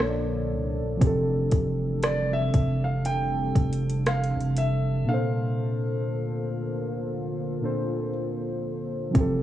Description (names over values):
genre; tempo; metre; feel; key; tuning
contemporary R&B; 59 BPM; 4/4; swing 58% on 16ths; unclear; A4 = 443 Hz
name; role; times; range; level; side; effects
muted felt-like synth keys; accompaniment; 0.0-9.4 s; Bb2 to D5; -28 LUFS; equal; chorus
deep dark ambient pad; sustained chords; 0.0-9.4 s; C3 to A4; -31 LUFS; left 1 dB; chorus, built-in reverb, sidechain pumping
long sustained 808-style bass; bass; 0.0-9.4 s; F1 to C2; -28 LUFS; right 1 dB; none
smooth R&B drum kit; drums; 0.0-9.4 s; hi-hat, kick drum, rim click; -24 LUFS; equal; overdrive, vintage 12-bit sampler grit
warm concert grand piano; melody; 2.0-8.1 s; D5 to G5; -32 LUFS; right 1 dB; none
room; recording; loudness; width
light reverb; worn, warbling old tape, cassette tape, warbly pitch drift; -24 LUFS; side -12 dB against mid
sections
0.0-9.2 A section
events
break 5.1-9.2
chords
0.0 Bbmaj7; 1.0 Fmaj9; 5.1 Bbmaj7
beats
0.00 | 1.01 2.03 3.05 4.07 | 5.08 6.10 7.12 8.13 | 9.15